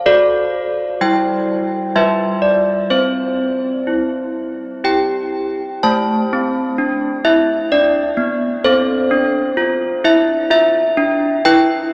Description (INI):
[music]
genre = classical, tune for handbells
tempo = 64 BPM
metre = 3/4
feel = straight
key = C major, A minor from 5.8 s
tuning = A4 = 440 Hz
[part]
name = desk bells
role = solo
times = 0.0-11.9 s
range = G3 to A5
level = -16 LUFS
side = equal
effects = none
[sound]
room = wet cathedral reverb, RT60 6.1 s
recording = none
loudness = -16 LUFS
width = mono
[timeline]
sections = 0.0-5.8 A section; 5.8-11.9 B section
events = none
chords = 0.1 D7/F#; 1.0 C/G; 2.0 G7; 2.9 C; 5.8 Am; 8.6 Am/C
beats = | 0.08 1.03 1.98 | 2.93 3.88 4.87 | 5.84 6.79 7.72 | 8.65 9.58 10.52 | 11.46